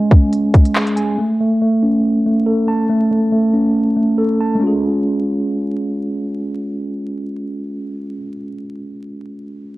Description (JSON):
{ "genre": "hip hop, drill", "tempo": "140 BPM", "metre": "4/4", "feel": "half-time", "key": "unclear", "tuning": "A4 = 443 Hz", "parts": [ { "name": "mellow tine electric piano", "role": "accompaniment", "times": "0.0-9.8 s", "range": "G#3 to A5", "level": "-16 LUFS", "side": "equal", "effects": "medium stereo tremolo" }, { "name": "drill drum kit", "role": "drums", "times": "0.1-1.1 s", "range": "handclaps, hi-hat, kick drum", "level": "-11 LUFS", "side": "equal", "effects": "vintage 12-bit sampler grit" } ], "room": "wet spring reverb, RT60 1.2 s", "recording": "worn, warbling old tape, cassette tape, vinyl crackle, warbly pitch drift", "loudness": "-14 LUFS", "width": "side -18 dB against mid", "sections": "0.0-4.6 A section; 4.6-8.0 B section", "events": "none", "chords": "0.0 C#5; 1.2 A; 4.6 C#" }